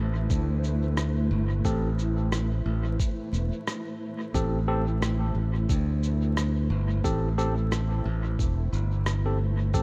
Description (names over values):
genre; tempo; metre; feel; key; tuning
ambient dub; 89 BPM; 4/4; swing 57% on 16ths; A minor; A4 = 440 Hz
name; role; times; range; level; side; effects
granular cloud pad; sustained chords; 0.0-9.8 s; A3 to C5; -37 LUFS; equal; built-in reverb
modern bright fingered electric bass; bass; 0.0-9.8 s; E1 to D2; -28 LUFS; equal; none
electronic kick drum; drums; 0.3-9.8 s; none; -30 LUFS; equal; none
electronic shaker and rim click; drums; 0.3-9.8 s; none; -37 LUFS; equal; overdrive, dub echo
tine electric piano; stabs; 1.7-9.8 s; C4 to A4; -37 LUFS; equal; dub echo
room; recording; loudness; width
light reverb, digital ambience; dark, warm production, vinyl crackle; -27 LUFS; mono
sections
0.0-9.8 A section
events
none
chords
0.0 Am7